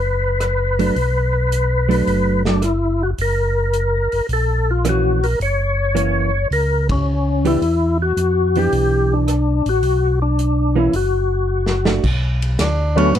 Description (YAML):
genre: soul jazz organ trio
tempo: 108 BPM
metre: 4/4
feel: swing 69% on 8ths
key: B minor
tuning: A4 = 444 Hz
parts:
  - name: overdriven tonewheel organ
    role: melody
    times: 0.0-13.1 s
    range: D3 to C#5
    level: -19 LUFS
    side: left 3 dB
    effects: slow rotary speaker, chorus vibrato
  - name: mellow tonewheel organ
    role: bass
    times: 0.0-13.2 s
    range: F#1 to A2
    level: -19 LUFS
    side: equal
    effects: overdrive, chorus vibrato, slow rotary speaker
  - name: warm soul drum kit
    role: drums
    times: 0.4-13.2 s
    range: crash cymbal, hi-hat, kick drum, ride cymbal, rim click, snare drum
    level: -26 LUFS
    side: equal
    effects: none
  - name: hollow-body jazz guitar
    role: accompaniment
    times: 0.8-13.1 s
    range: E3 to G4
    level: -20 LUFS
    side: right 5 dB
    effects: none
  - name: clear tenor saxophone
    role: melody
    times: 12.6-13.2 s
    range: B3 to D4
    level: -20 LUFS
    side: right 3 dB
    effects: none
room: light reverb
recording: dark, warm production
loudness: -16 LUFS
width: side -10 dB against mid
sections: 0.0-12.1 A section; 12.1-13.2 B section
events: band accent 6.8; drum fill 11.5-12.1; tenor saxophone solo 12.1-13.2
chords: 0.0 Bm7; 3.2 F#7; 7.6 Em7; 9.8 Bm; 10.9 F#m; 12.1 Bm7